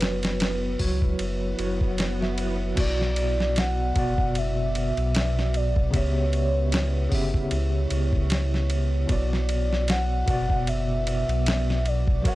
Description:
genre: trip hop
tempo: 76 BPM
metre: 4/4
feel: swing 56% on 16ths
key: B minor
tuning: A4 = 439 Hz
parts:
  - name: pure breathy sine lead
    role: melody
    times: 0.0-12.3 s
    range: B4 to F#5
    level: -31 LUFS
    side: equal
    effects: analog chorus, tape echo
  - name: bell-like tine electric piano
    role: accompaniment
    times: 0.0-12.3 s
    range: B2 to E5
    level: -29 LUFS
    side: equal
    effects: medium stereo tremolo, tape echo
  - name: deep dark ambient pad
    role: sustained chords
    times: 0.0-12.3 s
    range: B3 to D5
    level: -36 LUFS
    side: right 3 dB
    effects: chorus, built-in reverb
  - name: warm sub bass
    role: bass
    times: 0.0-12.3 s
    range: F#1 to C#2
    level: -26 LUFS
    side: equal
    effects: tube saturation
  - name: dusty soul sampler-style drum kit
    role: drums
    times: 0.0-12.3 s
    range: crash cymbal, hi-hat, kick drum, ride cymbal, snare drum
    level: -28 LUFS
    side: equal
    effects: none
  - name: swell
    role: sound effects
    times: 1.5-2.8 s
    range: none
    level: -37 LUFS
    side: left 2 dB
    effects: none
room: little or no reverb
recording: dry, gritty hardware recording, cassette tape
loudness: -22 LUFS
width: side -17 dB against mid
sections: 0.0-2.8 A section; 2.8-12.3 B section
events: filter sweep on tine electric piano 0.0-2.8; swell 1.5-2.8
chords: 0.0 F#sus4; 2.8 Bm; 5.9 C#m7b5; 9.1 Bm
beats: 0.41 1.20 1.98 | 2.77 3.56 4.35 5.14 | 5.93 6.72 7.51 8.30 | 9.09 9.88 10.67 11.46 | 12.25

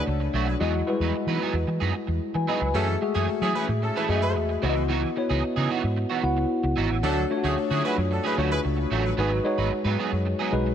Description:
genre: pop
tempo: 112 BPM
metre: 4/4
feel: straight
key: C# minor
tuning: A4 = 440 Hz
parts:
  - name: warm horn section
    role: second line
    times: 0.0-8.6 s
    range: C#4 to B4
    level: -32 LUFS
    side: equal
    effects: ping-pong delay
  - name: tine electric piano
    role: accompaniment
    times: 0.0-10.7 s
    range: G3 to B5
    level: -26 LUFS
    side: left 2 dB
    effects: lush chorus
  - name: electric guitar at the edge of break-up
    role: riff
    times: 0.1-10.7 s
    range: E3 to B4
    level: -30 LUFS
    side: right 8 dB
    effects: ensemble chorus
  - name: vintage muted fingered electric bass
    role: bass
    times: 0.1-10.7 s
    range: G#1 to F#3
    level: -26 LUFS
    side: equal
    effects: none
room: light reverb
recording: none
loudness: -22 LUFS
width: side -9 dB against mid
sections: 0.0-10.7 A section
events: none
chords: 0.0 Dmaj7; 0.6 Emaj9; 2.7 F#m9; 4.6 C#m11; 7.0 Dmaj7; 9.2 G#m7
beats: 0.07 | 0.60 1.14 1.68 2.21 | 2.75 3.28 3.82 4.36 | 4.89 5.43 5.96 6.50 | 7.04 7.57 8.11 8.64 | 9.18 9.72 10.25

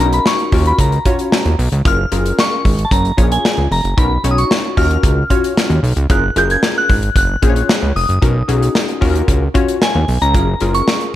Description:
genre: early-eighties boogie funk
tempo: 113 BPM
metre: 4/4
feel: straight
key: F# major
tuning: A4 = 440 Hz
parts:
  - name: soft synth bell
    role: melody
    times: 0.0-11.2 s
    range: G#5 to G#6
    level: -19 LUFS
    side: equal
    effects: chorus, phaser
  - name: funky polysynth comp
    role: accompaniment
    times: 0.0-11.2 s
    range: C#4 to C#5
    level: -20 LUFS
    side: left 3 dB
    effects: chorus
  - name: fat analog bass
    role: bass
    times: 0.0-10.8 s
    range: E#1 to D#2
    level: -15 LUFS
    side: equal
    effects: none
  - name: modern studio drum kit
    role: drums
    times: 0.1-11.1 s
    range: hi-hat, kick drum, snare drum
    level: -16 LUFS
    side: equal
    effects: gated reverb
room: studio reverb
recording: none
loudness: -12 LUFS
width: side -13 dB against mid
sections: 0.0-11.2 A section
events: none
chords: 0.0 Bmaj9; 0.5 D#m7; 1.9 F#maj7; 4.0 Bmaj9; 4.8 D#m7; 6.1 F#maj7; 8.2 Bmaj9; 9.0 D#m7; 10.3 F#maj7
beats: 0.26 0.79 1.32 | 1.85 2.38 2.91 3.44 | 3.97 4.50 5.04 5.57 | 6.10 6.63 7.16 7.69 | 8.22 8.75 9.28 9.81 | 10.35 10.88

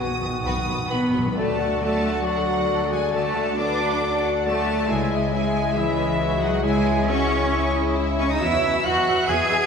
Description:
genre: cinematic, heroic adventure film score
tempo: 136 BPM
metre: 4/4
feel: straight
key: unclear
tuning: A4 = 440 Hz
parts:
  - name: rich studio violin section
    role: melody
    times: 0.0-9.7 s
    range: E5 to G#6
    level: -30 LUFS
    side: left 2 dB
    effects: none
  - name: warm symphonic violin section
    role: second line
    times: 0.0-9.7 s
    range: B3 to B4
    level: -33 LUFS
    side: left 3 dB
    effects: none
  - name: rich symphonic viola section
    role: accompaniment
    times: 0.0-9.7 s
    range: B3 to F#5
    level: -32 LUFS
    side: equal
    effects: none
  - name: dark French horn section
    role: sustained chords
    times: 0.0-9.7 s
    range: D#3 to E5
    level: -30 LUFS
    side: left 4 dB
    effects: none
  - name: concert harp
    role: arpeggios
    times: 0.0-9.7 s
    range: B2 to E6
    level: -32 LUFS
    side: left 7 dB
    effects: none
  - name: mellow trumpet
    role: stabs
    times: 0.0-9.7 s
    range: E4 to G#5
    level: -29 LUFS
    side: right 2 dB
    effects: none
  - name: rich symphonic cello section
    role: bass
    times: 0.0-9.7 s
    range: B2 to G#4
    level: -25 LUFS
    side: right 2 dB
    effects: none
  - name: rich symphonic double bass section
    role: bass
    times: 0.0-9.6 s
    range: B1 to E2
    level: -30 LUFS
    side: right 1 dB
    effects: none
  - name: timpani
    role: percussion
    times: 0.0-1.3 s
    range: B2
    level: -30 LUFS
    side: equal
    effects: none
  - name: clear clarinet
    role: second line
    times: 1.3-9.7 s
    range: F#4 to G#4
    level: -33 LUFS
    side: left 3 dB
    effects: none
  - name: concert flute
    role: second line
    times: 1.4-9.7 s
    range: D5 to E5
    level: -31 LUFS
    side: left 7 dB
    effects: none
  - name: clear trombone section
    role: sustained chords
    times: 1.4-9.7 s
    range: B2 to G#3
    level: -32 LUFS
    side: right 1 dB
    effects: none
room: wet scoring stage reverb, RT60 2.0 s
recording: heard from further back in the room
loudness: -19 LUFS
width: side -6 dB against mid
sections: 0.0-1.3 A section; 1.3-9.7 A section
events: timpani fill 0.0-1.3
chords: 0.0 B; 1.3 D; 4.9 C#madd9; 8.4 Eadd9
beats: 0.44 0.90 | 1.35 1.79 2.24 2.68 | 3.12 3.57 4.01 4.45 | 4.88 5.32 5.76 6.20 | 6.63 7.08 7.52 7.96 | 8.40 8.84 9.28

